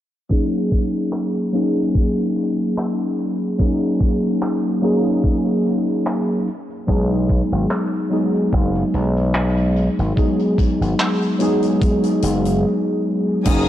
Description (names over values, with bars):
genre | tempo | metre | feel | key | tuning
vaporwave | 73 BPM | 4/4 | swing 55% on 16ths | F# major | A4 = 440 Hz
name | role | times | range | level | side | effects
mellow tine electric piano | accompaniment | 0.3-13.7 s | F#3 to G#4 | -18 LUFS | equal | analog chorus, vintage 12-bit sampler grit, tape echo
electronic kick drum | drums | 0.3-13.6 s | none | -18 LUFS | equal | none
huge arena drum kit | drums | 0.3-13.6 s | crash cymbal, handclaps, hi-hat | -28 LUFS | equal | low-pass filter on hats, low-pass filter on cymbals, low-pass filter on snare, low-pass filter on room
slap bass with an envelope filter | bass | 6.9-13.7 s | F#1 to B1 | -20 LUFS | equal | tube saturation
dark studio string section | sustained chords | 13.5-13.7 s | A#4 to D#6 | -24 LUFS | left 2 dB | none
room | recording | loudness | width
light reverb, small room ambience | dry, gritty hardware recording, low-pass filter | -17 LUFS | side -12 dB against mid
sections
0.3-13.5 A section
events
filter sweep on drum 0.3-13.5; filter sweep 0.3-13.5; break 12.6-13.5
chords
0.3 F#69; 6.5 B6